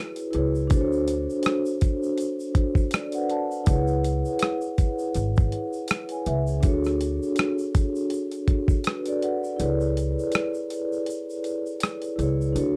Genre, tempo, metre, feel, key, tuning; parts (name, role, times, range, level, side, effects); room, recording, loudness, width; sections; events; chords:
lo-fi hip hop; 81 BPM; 4/4; swing 57% on 16ths; A4 = 438 Hz
vibraphone with soft mallets; accompaniment; 0.0-12.8 s; D4 to A5; -28 LUFS; equal; cassette tape, low-pass filter
dusty soul sampler-style drum kit; drums; 0.2-12.8 s; hi-hat, kick drum, rim click; -25 LUFS; equal
tube shaker; percussion; 0.2-12.8 s; -51 LUFS; equal
upright bass; bass; 0.3-12.8 s; G#1 to D2; -29 LUFS; equal
light reverb; -25 LUFS; mono
0.0-9.6 A section; 9.6-12.8 B section
kick muted 9.6-12.8
0.0 C#m7; 0.7 Dmaj7; 3.7 C#m7; 6.6 Dmaj7#11; 9.6 C#m7